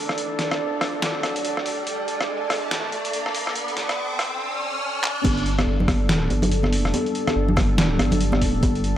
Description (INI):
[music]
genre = deep dubstep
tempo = 142 BPM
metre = 4/4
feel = swing 60% on 16ths, half-time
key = unclear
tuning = A4 = 438 Hz
[part]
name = deep dark ambient pad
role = sustained chords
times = 0.0-9.0 s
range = G3 to D5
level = -27 LUFS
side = right 1 dB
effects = chorus, built-in reverb
[part]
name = riser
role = sound effects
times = 0.0-5.2 s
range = none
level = -29 LUFS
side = equal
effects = none
[part]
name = trip hop sampler-style drum kit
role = drums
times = 0.1-8.9 s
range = crash cymbal, handclaps, hi-hat, rim click, snare drum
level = -26 LUFS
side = equal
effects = none
[part]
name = saturated sub bass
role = bass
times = 5.2-9.0 s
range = G1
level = -23 LUFS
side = equal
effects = tube saturation
[part]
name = electronic kick drum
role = drums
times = 5.2-8.7 s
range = none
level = -23 LUFS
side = equal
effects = none
[part]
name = congas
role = percussion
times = 5.2-8.7 s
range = none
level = -24 LUFS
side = equal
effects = dub echo
[sound]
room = digital ambience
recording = dry, gritty hardware recording, high-pass filter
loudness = -20 LUFS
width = side -11 dB against mid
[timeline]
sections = 0.0-5.2 A section; 5.2-9.0 B section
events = build-up 0.0-5.2; riser 0.0-5.2; drum fill 5.0; drop 5.2-9.0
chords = 0.0 D5; 5.2 G5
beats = | 0.18 0.60 1.02 1.45 | 1.87 2.29 2.71 3.13 | 3.56 3.98 4.40 4.83 | 5.25 5.67 6.09 6.52 | 6.94 7.36 7.78 8.21 | 8.63